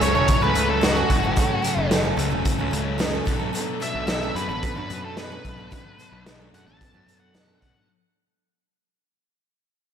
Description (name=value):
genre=quiet-loud alternative rock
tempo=110 BPM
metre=4/4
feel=straight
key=unclear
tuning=A4 = 440 Hz
part: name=octave-fuzz lead guitar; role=melody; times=0.0-7.9 s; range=F#4 to A5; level=-26 LUFS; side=right 1 dB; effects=distortion, slapback echo
part: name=picked steel-string acoustic guitar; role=arpeggios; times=0.0-7.9 s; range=F#2 to A4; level=-28 LUFS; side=right 8 dB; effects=slapback echo
part: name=thick fuzz guitar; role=riff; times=0.0-7.9 s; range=F#2 to D4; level=-29 LUFS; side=left 10 dB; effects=distortion, slapback echo
part: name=fuzz picked electric bass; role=bass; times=0.0-7.7 s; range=E1 to F#2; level=-28 LUFS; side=equal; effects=overdrive
part: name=raw garage drum kit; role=drums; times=0.0-7.7 s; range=hi-hat, kick drum, snare drum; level=-25 LUFS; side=equal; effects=none
room=moderate lush hall reverb, RT60 2.3 s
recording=big arena sound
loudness=-20 LUFS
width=side -8 dB against mid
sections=0.0-7.9 A section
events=fade-out 0.0-7.9; lead electric guitar solo 0.0-7.9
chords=0.0 F#m; 3.3 Bm7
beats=0.28 0.82 | 1.36 1.90 2.45 2.99 | 3.53 4.08 4.62 5.16 | 5.71 6.25 6.80 7.34